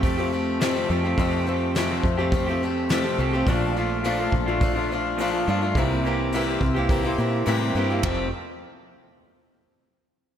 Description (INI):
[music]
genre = folk rock and heartland rock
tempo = 105 BPM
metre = 4/4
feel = straight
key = F major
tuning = A4 = 440 Hz
[part]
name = picked swing-style acoustic guitar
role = accompaniment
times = 0.0-8.3 s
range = F2 to G4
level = -27 LUFS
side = left 5 dB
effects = none
[part]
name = electric guitar through a small old amp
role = riff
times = 0.0-8.3 s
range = Bb2 to G4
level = -25 LUFS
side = right 2 dB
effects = none
[part]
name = fingered electric bass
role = bass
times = 0.0-8.3 s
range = F1 to Bb2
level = -28 LUFS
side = equal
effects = none
[part]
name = soft brush drum kit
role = drums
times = 0.0-8.2 s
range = hi-hat, kick drum, ride cymbal, snare drum, toms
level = -27 LUFS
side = equal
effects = none
[sound]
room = moderate lush hall reverb, RT60 2.0 s, small room ambience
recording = big arena sound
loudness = -21 LUFS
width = side -9 dB against mid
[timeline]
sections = 0.0-8.0 A section; 8.0-10.3 B section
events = none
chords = 0.0 Fadd9; 3.5 Bbmaj7; 5.8 C7; 8.0 Fadd9